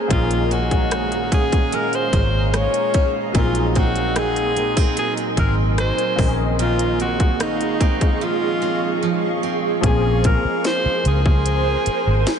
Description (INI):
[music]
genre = contemporary R&B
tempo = 74 BPM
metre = 4/4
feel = straight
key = Bb minor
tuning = A4 = 440 Hz
[part]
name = clear baby grand piano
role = accompaniment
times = 0.0-12.4 s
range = Eb3 to Ab4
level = -28 LUFS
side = left 5 dB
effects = ensemble chorus
[part]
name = granular cloud pad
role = sustained chords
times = 0.0-12.4 s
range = Ab4 to Db6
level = -25 LUFS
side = right 1 dB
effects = built-in reverb, sidechain pumping
[part]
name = picked steel-string acoustic guitar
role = arpeggios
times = 0.0-10.4 s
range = Bb2 to C5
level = -27 LUFS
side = right 7 dB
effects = diffuse ambient delay
[part]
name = bright alto saxophone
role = melody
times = 0.1-12.4 s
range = Eb4 to Db5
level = -23 LUFS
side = equal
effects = diffuse ambient delay
[part]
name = vintage muted fingered electric bass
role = bass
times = 0.1-12.2 s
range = Ab1 to Db2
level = -21 LUFS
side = equal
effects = none
[part]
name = trap drum kit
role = drums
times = 0.1-12.4 s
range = hi-hat, kick drum, rim click, snare drum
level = -21 LUFS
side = equal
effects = none
[sound]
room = moderate cathedral reverb, RT60 5.6 s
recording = dreamy mix soaked in reverb, nothing above 10.5 kHz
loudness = -17 LUFS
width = side -7 dB against mid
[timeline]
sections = 0.0-9.8 A section; 9.8-12.4 B section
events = none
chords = 0.1 Eb9sus4/Bb; 3.3 Ab9/Bb; 6.2 Dbmaj9/Bb; 9.8 Bbm9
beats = | 0.10 0.92 1.73 2.54 | 3.35 4.16 4.97 5.78 | 6.59 7.40 8.21 9.02 | 9.84 10.65 11.46 12.27